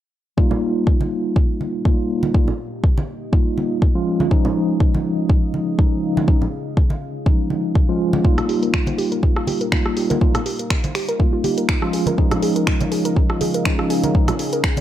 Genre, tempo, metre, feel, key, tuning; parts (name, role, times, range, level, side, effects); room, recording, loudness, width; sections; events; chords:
deep house; 122 BPM; 4/4; swing 55% on 16ths; F minor; A4 = 440 Hz
deep dark ambient pad; sustained chords; 1.8-14.8 s; Bb3 to G5; -32 LUFS; equal; chorus, built-in reverb, sidechain pumping
mellow tine electric piano; stabs; 0.4-14.3 s; F3 to F4; -21 LUFS; equal; medium stereo tremolo, vintage 12-bit sampler grit, sidechain pumping, low-pass filter, tape echo
electronic kick drum; drums; 0.4-14.7 s; -17 LUFS; equal
congas; percussion; 0.5-14.8 s; -26 LUFS; right 2 dB
warbly dusty pluck; arpeggios; 8.2-14.8 s; Eb4 to Db5; -26 LUFS; right 3 dB; chorus, sidechain pumping, analog delay
deep house drum kit; drums; 8.4-14.8 s; finger snaps, hi-hat, rim click; -25 LUFS; equal; low-pass filter on snare, low-pass filter on hats
light reverb; dry, gritty hardware recording; -16 LUFS; side -12 dB against mid
0.4-14.8 A section
0.4 F9sus4; 4.1 Eb9sus4; 8.2 F9sus4; 11.9 Eb9sus4